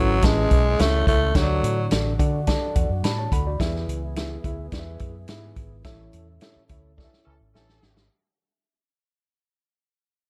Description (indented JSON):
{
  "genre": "uptempo 1960s-style soul",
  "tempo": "107 BPM",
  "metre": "4/4",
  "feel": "straight",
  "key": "A major",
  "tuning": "A4 = 440 Hz",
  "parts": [
    { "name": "growling tenor saxophone", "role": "melody", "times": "0.0-1.9 s", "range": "F#3 to A3", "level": "-26 LUFS", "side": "equal", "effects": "none" },
    { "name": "mellow reed electric piano", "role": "accompaniment", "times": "0.0-8.0 s", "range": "A2 to B5", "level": "-32 LUFS", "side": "equal", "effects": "none" },
    { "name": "mellow tonewheel organ", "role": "sustained chords", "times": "0.0-8.1 s", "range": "B3 to A4", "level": "-41 LUFS", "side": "equal", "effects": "none" },
    { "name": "vintage muted fingered electric bass", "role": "bass", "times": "0.0-8.1 s", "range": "G#1 to D3", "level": "-28 LUFS", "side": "equal", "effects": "none" },
    { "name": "vintage drum kit", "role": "drums", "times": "0.2-8.1 s", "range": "hi-hat, kick drum, snare drum", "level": "-26 LUFS", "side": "equal", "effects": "none" },
    { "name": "mellow horn section", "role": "second line", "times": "7.0-8.1 s", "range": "E3 to A4", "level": "-71 LUFS", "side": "equal", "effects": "none" }
  ],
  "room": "light reverb",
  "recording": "dark, warm production",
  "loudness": "-22 LUFS",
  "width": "mono",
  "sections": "0.0-8.1 A section",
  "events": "fade-out 0.0-8.1; reed electric piano fill 1.9-3.6; band accent 5.9-8.1; drum fill 7.0-8.1",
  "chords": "0.0 A; 1.4 D; 3.6 E; 5.9 A"
}